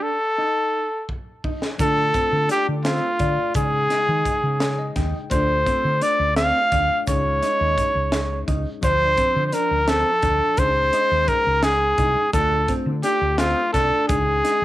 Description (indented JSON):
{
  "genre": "progressive instrumental, band music in an uneven meter",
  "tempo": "171 BPM (eighths)",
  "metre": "5/8",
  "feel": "straight",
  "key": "unclear",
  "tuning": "A4 = 440 Hz",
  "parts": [
    { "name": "warm trumpet", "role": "melody", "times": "0.0-14.6 s", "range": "F4 to F5", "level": "-19 LUFS", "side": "equal", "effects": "cassette tape, plate reverb" },
    { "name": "mellow electric guitar", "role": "arpeggios", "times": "0.0-14.6 s", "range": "C4 to D5", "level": "-30 LUFS", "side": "equal", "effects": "wide subtle chorus, cassette tape, plate reverb" },
    { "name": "crisp fusion drum kit", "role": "drums", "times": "1.1-14.6 s", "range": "hi-hat, kick drum, snare drum", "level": "-27 LUFS", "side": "equal", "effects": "cassette tape" },
    { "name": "bell-like tine electric piano", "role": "accompaniment", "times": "1.8-14.6 s", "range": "Db3 to G5", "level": "-31 LUFS", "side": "left 7 dB", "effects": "cassette tape, plate reverb" },
    { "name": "woody fretless electric bass", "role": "bass", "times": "1.8-14.6 s", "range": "C2 to Eb3", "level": "-25 LUFS", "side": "equal", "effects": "lush chorus" },
    { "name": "egg shaker", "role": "percussion", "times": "1.8-14.4 s", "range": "none", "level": "-44 LUFS", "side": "right 10 dB", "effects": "none" }
  ],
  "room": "moderate studio reverb, RT60 0.6 s",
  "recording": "home recording on cassette",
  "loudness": "-18 LUFS",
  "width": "side -15 dB against mid",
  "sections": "0.0-1.8 A section; 1.8-14.6 B section",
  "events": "break 0.0-1.8; drum fill 1.1-1.8; tine electric piano fill 4.3-5.3",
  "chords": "0.0 N.C.; 1.8 Dm; 3.6 Dbsus2; 5.3 Dm; 7.1 Dbsus2; 8.8 Dm; 10.6 Dbsus2; 12.3 Dm; 14.1 Dbsus2",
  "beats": "| 0.03 0.39 0.74 1.09 1.44 | 1.80 2.15 2.50 2.85 3.21 | 3.56 3.91 4.26 4.61 4.97 | 5.32 5.67 6.02 6.37 6.72 | 7.08 7.43 7.78 8.13 8.48 | 8.83 9.18 9.53 9.88 10.24 | 10.59 10.94 11.29 11.64 11.99 | 12.34 12.69 13.04 13.40 13.75 | 14.10 14.45"
}